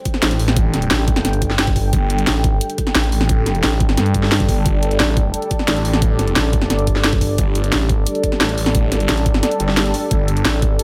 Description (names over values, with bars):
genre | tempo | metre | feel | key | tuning
dark technical drum and bass | 176 BPM | 4/4 | straight | unclear | A4 = 440 Hz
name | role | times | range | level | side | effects
deep dark ambient pad | sustained chords | 0.0-10.8 s | G3 to G5 | -26 LUFS | equal | chorus, built-in reverb, sidechain pumping
drum and bass drum kit | drums | 0.1-10.8 s | hi-hat, snare drum | -22 LUFS | equal | overdrive
electronic kick drum | drums | 0.1-10.7 s | none | -21 LUFS | equal | overdrive
phased detuned saw bass | bass | 0.2-10.4 s | G1 to A1 | -21 LUFS | equal | phaser, overdrive
growling FM bass | bass | 0.9-10.8 s | G1 to G2 | -22 LUFS | equal | tube saturation
swell | sound effects | 9.6-10.1 s | none | -30 LUFS | equal | none
room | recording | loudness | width
digital ambience | none | -17 LUFS | mono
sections
0.0-10.8 A section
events
kick drops out 9.4-10.1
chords
0.0 G5